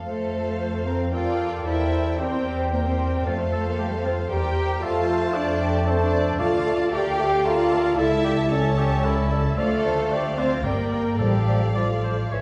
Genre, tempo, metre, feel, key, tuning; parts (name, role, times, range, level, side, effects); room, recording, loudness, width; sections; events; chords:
quick classical-period movement for symphony orchestra; 113 BPM; 3/4; rubato; F major, D minor from 6.4 s; A4 = 440 Hz
mellow oboe; second line; 0.0-12.4 s; E4 to D5; -35 LUFS; equal
rich chamber violin section; second line; 0.0-12.3 s; F4 to G5; -35 LUFS; equal
dark chamber viola section; accompaniment; 0.0-12.4 s; G4 to E5; -33 LUFS; equal
rich chamber violin section; melody; 0.1-12.4 s; E5 to A5; -39 LUFS; equal
mellow clarinet; second line; 0.1-12.4 s; A4 to D5; -35 LUFS; equal
mellow bassoon; accompaniment; 0.1-12.4 s; E3 to A3; -34 LUFS; equal
warm French horn section; sustained chords; 0.1-12.3 s; F3 to G4; -29 LUFS; equal
warm studio cello section; bass; 0.1-12.3 s; F3 to G4; -34 LUFS; equal
warm studio double bass section; bass; 0.1-12.4 s; G1 to F2; -28 LUFS; equal
timpani; percussion; 6.4-7.1, 11.2-12.4 s; A2 to D3; -33 LUFS; equal
wet recital hall reverb, RT60 1.6 s; heard from further back in the room; -23 LUFS; mono
0.1-12.4 A section
0.1 F; 1.1 Gm7/F; 1.7 C7/E; 3.3 F; 4.3 C7/E; 4.8 F; 6.4 Dm; 8.0 A7/C#; 9.6 Dm; 10.7 Gm; 11.2 Dm/A